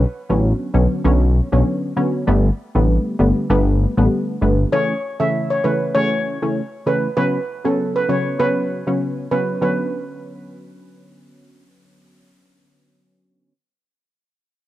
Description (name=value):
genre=dancehall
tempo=98 BPM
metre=4/4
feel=swing 56% on 16ths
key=B minor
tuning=A4 = 440 Hz
part: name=punchy chord stab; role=accompaniment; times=0.0-13.5 s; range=C#3 to C#4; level=-20 LUFS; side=equal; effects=chorus
part: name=fat analog bass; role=bass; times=0.0-4.6 s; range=G1 to B1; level=-16 LUFS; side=equal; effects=none
part: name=steel pan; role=melody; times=4.7-11.4 s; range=A4 to E5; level=-21 LUFS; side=right 1 dB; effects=cassette tape
room=light reverb, small room ambience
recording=home recording on cassette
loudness=-16 LUFS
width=side -14 dB against mid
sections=0.0-4.7 A section; 4.7-9.6 B section; 9.6-12.1 C section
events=none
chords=0.0 Bmadd9; 2.3 Gadd9; 4.7 A; 7.2 F#sus4; 9.6 Bmadd9